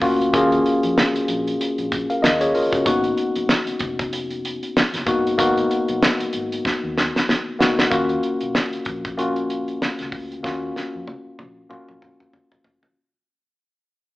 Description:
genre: lush 1970s-style soul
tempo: 95 BPM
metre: 4/4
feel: swing 58% on 16ths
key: Eb minor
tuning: A4 = 440 Hz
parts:
  - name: tine electric piano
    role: accompaniment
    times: 0.0-13.0 s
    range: Bb3 to F5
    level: -21 LUFS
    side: left 1 dB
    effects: none
  - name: vintage muted fingered electric bass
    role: bass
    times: 0.0-12.9 s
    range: F1 to F2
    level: -36 LUFS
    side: equal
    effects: none
  - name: damped 70s drum kit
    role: drums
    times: 0.0-13.0 s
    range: hi-hat, kick drum, snare drum, toms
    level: -22 LUFS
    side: equal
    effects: none
room: wet large studio reverb, RT60 1.1 s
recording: band playing live in one room, AM radio sound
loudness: -18 LUFS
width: side -18 dB against mid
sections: 0.0-7.9 A section; 7.9-13.0 B section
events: drum fill 6.7-7.9, 10.4-13.0; fade-out 7.9-13.0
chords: 0.0 Ebm7; 2.9 Abm9; 7.9 Ebm7 (rootless)

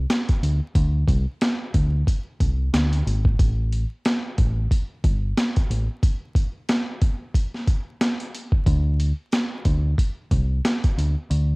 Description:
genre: hip hop, boom-bap hip-hop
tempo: 91 BPM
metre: 4/4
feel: swing 59% on 16ths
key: unclear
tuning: A4 = 440 Hz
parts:
  - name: deep dub fingered electric bass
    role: bass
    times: 0.0-11.6 s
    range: G1 to D2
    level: -21 LUFS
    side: equal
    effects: tube saturation
  - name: boom bap sampler-style drum kit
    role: drums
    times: 0.1-11.5 s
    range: hi-hat, kick drum, snare drum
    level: -21 LUFS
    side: equal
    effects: cassette tape
room: little or no reverb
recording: home recording on cassette, vinyl crackle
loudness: -20 LUFS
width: side -31 dB against mid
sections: 0.0-11.6 A section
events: kick muted 11.3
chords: none

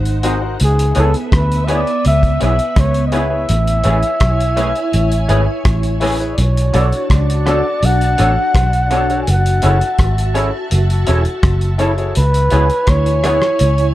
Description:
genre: lovers rock reggae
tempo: 83 BPM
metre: 4/4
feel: straight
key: B dorian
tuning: A4 = 440 Hz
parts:
  - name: soft string machine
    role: second line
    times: 0.0-13.9 s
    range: B3 to A5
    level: -23 LUFS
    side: equal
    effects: ensemble chorus
  - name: vintage muted fingered electric bass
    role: bass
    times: 0.0-13.9 s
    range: E1 to D2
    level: -15 LUFS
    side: equal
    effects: none
  - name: cloth-damped thuddy drum kit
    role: drums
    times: 0.1-13.9 s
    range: hi-hat, kick drum, rim click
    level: -19 LUFS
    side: equal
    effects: none
  - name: clear grand piano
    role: accompaniment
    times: 0.2-13.4 s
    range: D4 to C#5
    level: -22 LUFS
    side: left 3 dB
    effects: none
  - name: electric guitar through a small old amp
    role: stabs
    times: 0.2-13.3 s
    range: A3 to A4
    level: -23 LUFS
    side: right 2 dB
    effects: ensemble chorus
  - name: breathy flugelhorn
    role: melody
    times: 0.6-13.9 s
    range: G#4 to G#5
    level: -18 LUFS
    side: equal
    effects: tape echo
room: small room ambience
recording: dark, warm production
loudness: -12 LUFS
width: side -15 dB against mid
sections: 0.0-13.9 A section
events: none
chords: 0.0 G#7; 0.6 C#m7; 3.5 Amaj7; 6.4 Bm7; 9.3 F#m7; 12.2 C#m7

